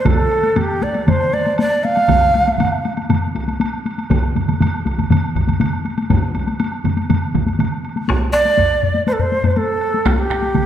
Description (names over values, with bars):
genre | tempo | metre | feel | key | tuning
japanese traditional, taiko drum ensemble | 120 BPM | 4/4 | straight | G suspended pentatonic | A4 = 440 Hz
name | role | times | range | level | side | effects
breathy shakuhachi | melody | 0.0-2.8, 8.3-10.7 s | F4 to F5 | -16 LUFS | right 2 dB | none
solo taiko drums | percussion | 0.1-10.7 s | none | -22 LUFS | left 4 dB | none
taiko ensemble | percussion | 0.1-9.6 s | none | -22 LUFS | left 2 dB | none
taiko ensemble | percussion | 0.1-10.7 s | none | -22 LUFS | right 4 dB | none
taiko ensemble | percussion | 0.1-10.7 s | none | -22 LUFS | right 1 dB | none
woodblock | percussion | 0.1-10.7 s | none | -29 LUFS | right 2 dB | none
room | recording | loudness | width
wet recital hall reverb, RT60 1.6 s | none | -15 LUFS | side -10 dB against mid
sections
0.0-8.1 A section; 8.1-10.7 B section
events
speeding up 0.0-10.7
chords
none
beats
| 0.06 0.57 1.08 1.58 | 2.09 2.59 3.10 3.60 | 4.10 4.60 5.10 5.60 | 6.10 6.60 7.10 7.59 | 8.09 8.58 9.07 9.56 | 10.05 10.54